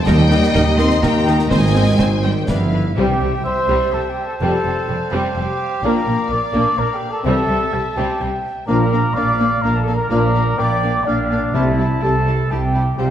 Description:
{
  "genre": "cinematic, heroic adventure film score",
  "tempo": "126 BPM",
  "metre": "3/4",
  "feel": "straight",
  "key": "C mixolydian",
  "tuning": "A4 = 437 Hz",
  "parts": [
    { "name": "rich studio violin section", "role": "melody", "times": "0.0-13.1 s", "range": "E5 to C6", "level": "-30 LUFS", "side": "left 4 dB", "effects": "none" },
    { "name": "warm symphonic violin section", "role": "second line", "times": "0.0-13.1 s", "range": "G3 to G5", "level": "-27 LUFS", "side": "left 3 dB", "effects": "none" },
    { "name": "rich symphonic viola section", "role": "accompaniment", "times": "0.1-13.1 s", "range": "G3 to C5", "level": "-24 LUFS", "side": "left 1 dB", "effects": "none" },
    { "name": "bright trombone section", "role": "sustained chords", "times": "0.1-13.1 s", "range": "C3 to Eb4", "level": "-27 LUFS", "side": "right 1 dB", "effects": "none" },
    { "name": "mellow tuba", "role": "bass", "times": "0.1-2.9 s", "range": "G1 to Eb2", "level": "-21 LUFS", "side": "equal", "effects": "none" },
    { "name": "rich symphonic cello section", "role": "bass", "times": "0.1-13.1 s", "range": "C2 to C4", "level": "-24 LUFS", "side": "right 1 dB", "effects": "none" },
    { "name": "warm symphonic double bass section", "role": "bass", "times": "0.1-13.1 s", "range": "F1 to Eb2", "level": "-21 LUFS", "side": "right 2 dB", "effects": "none" },
    { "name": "concert snare drum and concert bass drum", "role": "drums", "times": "0.1-2.7 s", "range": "none", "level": "-24 LUFS", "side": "left 1 dB", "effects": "none" },
    { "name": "timpani", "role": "percussion", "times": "0.1-0.8, 3.0-3.7, 11.5-12.2 s", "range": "C3 to Eb3", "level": "-23 LUFS", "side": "left 2 dB", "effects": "none" },
    { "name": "concert flute", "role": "second line", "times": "2.5-13.1 s", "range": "D5 to D6", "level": "-25 LUFS", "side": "left 3 dB", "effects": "none" },
    { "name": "dark trumpet section", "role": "stabs", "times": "2.5-13.1 s", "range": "D4 to D5", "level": "-22 LUFS", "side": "right 1 dB", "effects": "none" },
    { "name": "mellow French horn section", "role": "sustained chords", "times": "3.0-13.1 s", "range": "C4 to G4", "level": "-26 LUFS", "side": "left 5 dB", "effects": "none" },
    { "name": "dark cor anglais", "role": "second line", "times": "3.4-13.1 s", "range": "C5 to A5", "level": "-25 LUFS", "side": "equal", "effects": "none" }
  ],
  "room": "wet scoring stage reverb, RT60 1.8 s",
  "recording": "dark, warm production",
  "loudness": "-15 LUFS",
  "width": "side -10 dB against mid",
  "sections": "0.0-3.0 A section; 3.0-13.1 B section",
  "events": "none",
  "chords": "0.1 Eb; 1.5 Ab; 2.5 G7; 3.0 C; 4.4 Fsus2; 5.8 Bb; 7.3 C; 8.7 Bb; 11.5 Am7/C",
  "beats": "| 0.08 0.56 1.03 | 1.51 2.00 2.48 | 2.97 3.45 3.93 | 4.41 4.88 5.36 | 5.83 6.31 6.79 | 7.26 7.74 8.21 | 8.68 9.16 9.63 | 10.11 10.59 11.06 | 11.54 12.02 12.50 | 12.99"
}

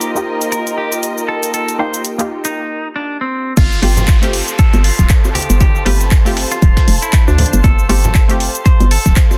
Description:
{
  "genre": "deep house",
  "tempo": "118 BPM",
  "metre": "4/4",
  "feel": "swing 58% on 16ths",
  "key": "unclear",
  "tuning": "A4 = 439 Hz",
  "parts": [
    { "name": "clean electric guitar", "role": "melody", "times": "0.0-9.1 s", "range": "C4 to C5", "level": "-24 LUFS", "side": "equal", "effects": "dub echo" },
    { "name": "airy breathy pad", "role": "sustained chords", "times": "0.0-9.4 s", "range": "Bb3 to C6", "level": "-29 LUFS", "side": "equal", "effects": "chorus, sidechain pumping" },
    { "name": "filtered dub chord stab", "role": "stabs", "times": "0.0-9.4 s", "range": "A3 to G4", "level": "-24 LUFS", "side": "equal", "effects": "phaser, sidechain pumping, dub echo" },
    { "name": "deep house drum kit", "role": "drums", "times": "0.0-9.4 s", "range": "crash cymbal, handclaps, hi-hat, shaker", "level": "-23 LUFS", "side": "equal", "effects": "none" },
    { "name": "muted chamber string section", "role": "texture", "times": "0.0-9.4 s", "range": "F4 to A5", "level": "-27 LUFS", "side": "equal", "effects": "sidechain pumping" },
    { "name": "hollow knocking FM bass", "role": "bass", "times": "3.6-9.1 s", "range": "D1 to D2", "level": "-17 LUFS", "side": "equal", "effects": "sidechain pumping" },
    { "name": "dusty soul sampler-style drum kit", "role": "drums", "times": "3.6-9.4 s", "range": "hi-hat, snare drum", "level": "-33 LUFS", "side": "equal", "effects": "none" },
    { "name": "electronic kick drum", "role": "drums", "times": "3.6-9.3 s", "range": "none", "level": "-13 LUFS", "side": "equal", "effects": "none" },
    { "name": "congas and bongos", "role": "percussion", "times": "3.6-9.4 s", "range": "none", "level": "-24 LUFS", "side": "equal", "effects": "none" },
    { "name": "downlifter", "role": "sound effects", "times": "3.6-7.6 s", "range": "none", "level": "-30 LUFS", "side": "equal", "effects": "none" }
  ],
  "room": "little or no reverb",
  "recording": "dense, heavily limited modern master",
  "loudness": "-14 LUFS",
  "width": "mono",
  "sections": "0.0-3.6 A section; 3.6-9.4 B section",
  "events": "filter sweep on synth stab 0.0-3.6; filter sweep on analog synth pad 0.0-3.6; break 2.6-3.6; drop 3.6-9.4",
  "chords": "0.0 F9sus4; 3.6 G9sus4",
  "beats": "0.01 0.52 1.03 | 1.54 2.05 2.56 3.06 | 3.57 4.08 4.59 5.10 | 5.61 6.12 6.62 7.13 | 7.64 8.15 8.66 9.16"
}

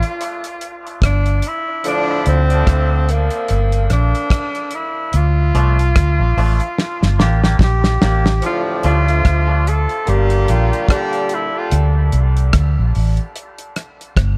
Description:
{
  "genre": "dub reggae",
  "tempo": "73 BPM",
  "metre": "4/4",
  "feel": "swing 58% on 16ths",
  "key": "D minor",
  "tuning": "A4 = 435 Hz",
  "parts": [
    { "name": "warm tenor saxophone", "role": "melody", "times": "0.0-11.7 s", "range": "Bb3 to A4", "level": "-24 LUFS", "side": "equal", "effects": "dub echo" },
    { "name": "damped 70s drum kit", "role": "drums", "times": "0.0-14.4 s", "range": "hi-hat, kick drum, rim click, snare drum", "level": "-20 LUFS", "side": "equal", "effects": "none" },
    { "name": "vintage muted fingered electric bass", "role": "bass", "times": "1.0-14.4 s", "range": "G1 to D2", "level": "-17 LUFS", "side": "equal", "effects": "none" },
    { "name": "dark horn section", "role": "second line", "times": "1.9-2.5, 8.4-11.5 s", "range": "A2 to G4", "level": "-26 LUFS", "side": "equal", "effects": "high-pass filter, dub echo" },
    { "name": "twangy electric guitar", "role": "accompaniment", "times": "5.5-9.1 s", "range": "F3 to G4", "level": "-30 LUFS", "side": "equal", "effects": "dub echo" }
  ],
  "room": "studio reverb",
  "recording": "echo-heavy mix",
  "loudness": "-16 LUFS",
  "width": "mono",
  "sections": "0.0-14.4 A section",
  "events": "break 0.0-8.4; drum fill 6.8-8.4",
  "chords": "0.2 Em7; 1.8 Dm; 3.5 Gm; 5.1 Dm; 6.8 Gm; 8.4 Dm; 10.1 Gm; 11.7 D5; 13.4 N.C.",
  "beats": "0.20 1.02 | 1.84 2.67 3.49 4.31 | 5.13 5.96 6.78 7.60 | 8.42 9.24 10.07 10.89 | 11.71 12.53 13.35 14.18"
}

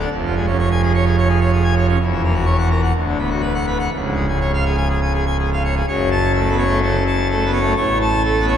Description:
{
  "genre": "classical, organ toccata",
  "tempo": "126 BPM",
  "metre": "4/4",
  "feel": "straight",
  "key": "F# minor",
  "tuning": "A4 = 435 Hz",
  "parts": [
    { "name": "pipe organ, full organ", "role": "solo", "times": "0.0-8.6 s", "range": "C#1 to A5", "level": "-15 LUFS", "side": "right 1 dB", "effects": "none" }
  ],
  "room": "wet church reverb, RT60 3.9 s",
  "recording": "recorded in a church or concert hall",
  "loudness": "-15 LUFS",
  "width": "side -9 dB against mid",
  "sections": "0.0-5.9 A section; 5.9-8.6 B section",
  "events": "none",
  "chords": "0.1 C#/E#; 2.0 F#7/E; 2.9 Bm/D; 3.9 C#; 5.9 F#m; 7.8 A",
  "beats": "| 0.11 0.58 1.05 1.53 | 2.00 2.47 2.95 3.43 | 3.92 4.41 4.89 5.38 | 5.87 6.34 6.82 7.30 | 7.77 8.24"
}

